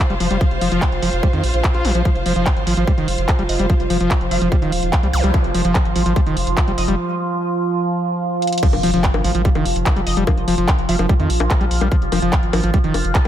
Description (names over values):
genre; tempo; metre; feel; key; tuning
psychedelic trance; 146 BPM; 4/4; straight; unclear; A4 = 440 Hz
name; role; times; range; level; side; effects
drum and bass drum kit; drums; 0.0-13.3 s; bongos, crash cymbal, handclaps, hi-hat; -25 LUFS; left 1 dB; none
electronic kick drum; drums; 0.0-13.2 s; none; -16 LUFS; equal; none
rich chamber string section; texture; 0.0-7.0 s; F4 to F5; -26 LUFS; right 2 dB; sidechain pumping
screaming distorted acid line; riff; 0.1-13.3 s; Eb3 to F4; -22 LUFS; moving between left 5 dB and right 4 dB; distortion, chorus, auto-pan, sidechain pumping, tape echo
round analog bass; bass; 0.1-13.3 s; Eb1 to F2; -21 LUFS; equal; none
overtone-sweeping drone; sustained chords; 3.1-13.3 s; F3 to F4; -22 LUFS; right 2 dB; chorus, built-in reverb, sidechain pumping
resonant blip pluck; second line; 3.5-6.9, 10.1-11.3 s; Eb5 to F5; -32 LUFS; left 3 dB; phaser, sidechain pumping, high-pass filter, dub echo
zap and impact; sound effects; 5.1-5.2, 8.6-10.3 s; none; -28 LUFS; equal; none
room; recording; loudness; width
light reverb, digital ambience; none; -15 LUFS; side -11 dB against mid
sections
0.0-8.6 A section; 8.6-13.3 B section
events
break 7.0-8.6; drum fill 8.4; drop 8.6-13.3; impact 8.6-10.3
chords
0.0 F5; 8.6 N.C.